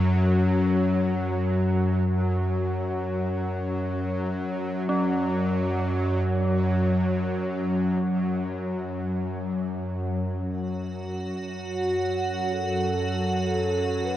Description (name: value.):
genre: dark ambient drone.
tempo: free time.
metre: none.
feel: none.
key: F# minor.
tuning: A4 = 440 Hz.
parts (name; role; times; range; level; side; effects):
dark detuned synth bell; arpeggios; 0.0-14.2 s; C#4 to A4; -34 LUFS; equal; chorus, diffuse ambient delay.
bowed-like drone; drone; 0.0-14.2 s; F#2 to F#3; -24 LUFS; equal; built-in reverb.
icy glass pad; texture; 10.9-14.2 s; F#4 to F#5; -30 LUFS; right 1 dB; chorus, built-in reverb.
mellow horn-like synth lead; melody; 11.5-14.2 s; F#4 to B4; -29 LUFS; right 2 dB; lush chorus.
room: wet huge ambient reverb, RT60 7.9 s.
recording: worn, warbling old tape, cassette tape, warbly pitch drift.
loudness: -24 LUFS.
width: side -12 dB against mid.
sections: 0.0-10.5 A section; 10.5-14.2 B section.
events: none.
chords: 0.0 F#m.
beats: free time.